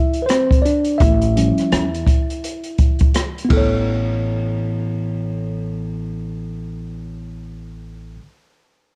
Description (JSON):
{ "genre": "hip hop, jazz-hop", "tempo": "84 BPM", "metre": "4/4", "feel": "swing 62% on 16ths", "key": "unclear", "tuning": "A4 = 440 Hz", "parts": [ { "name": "mellow tine electric piano", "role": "accompaniment", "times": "0.0-8.2 s", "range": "F3 to E5", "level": "-24 LUFS", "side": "equal", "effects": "cassette tape" }, { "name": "open jazz drum kit", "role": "drums", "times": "0.1-3.7 s", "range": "hi-hat, kick drum, ride cymbal, rim click", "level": "-20 LUFS", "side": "equal", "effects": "cassette tape" }, { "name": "upright bass", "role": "bass", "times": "1.0-8.2 s", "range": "A1 to E2", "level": "-25 LUFS", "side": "equal", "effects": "none" } ], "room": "small room ambience", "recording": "home recording on cassette", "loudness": "-19 LUFS", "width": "mono", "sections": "0.0-3.9 A section; 3.9-6.7 B section", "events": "tine electric piano solo 0.0-3.9", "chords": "0.0 Am (rootless); 1.0 A7b13; 3.5 A" }